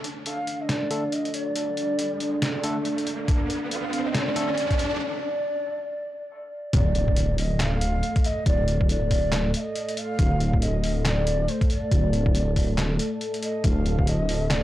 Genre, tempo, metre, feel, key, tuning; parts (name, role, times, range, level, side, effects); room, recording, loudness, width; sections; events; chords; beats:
deep dubstep; 139 BPM; 4/4; swing 60% on 16ths, half-time; D phrygian; A4 = 440 Hz
dark analog pad; sustained chords; 0.0-14.6 s; A3 to D5; -31 LUFS; equal; chorus
trip hop sampler-style drum kit; drums; 0.0-14.6 s; handclaps, hi-hat, snare drum; -30 LUFS; equal
riser and impact; sound effects; 0.0-8.5 s; -31 LUFS; right 1 dB
breathy mellow long shakuhachi; melody; 0.3-14.6 s; C5 to F5; -30 LUFS; equal; dub echo
barky tine electric piano; stabs; 0.9-4.5 s; D3 to A4; -35 LUFS; left 1 dB; medium stereo tremolo, low-pass filter, dub echo
electronic kick drum; drums; 3.3-14.1 s; -23 LUFS; equal
dark detuned saw bass; bass; 6.7-14.6 s; D1; -24 LUFS; equal
little or no reverb; dry, gritty hardware recording, cassette tape; -22 LUFS; side -14 dB against mid
0.0-6.7 A section; 6.7-14.6 B section
build-up 0.0-6.7; riser 0.0-5.0; filter sweep on tine electric piano 0.0-6.7; break 5.0-6.7; drop 6.7-14.6; impact 6.7-8.5
0.0 D5
0.26 0.69 1.12 | 1.56 1.99 2.42 2.85 | 3.28 3.71 4.15 4.58 | 5.01 5.44 5.87 6.30 | 6.74 7.17 7.60 8.03 | 8.46 8.89 9.32 9.76 | 10.19 10.62 11.05 11.48 | 11.91 12.35 12.78 13.21 | 13.64 14.07 14.51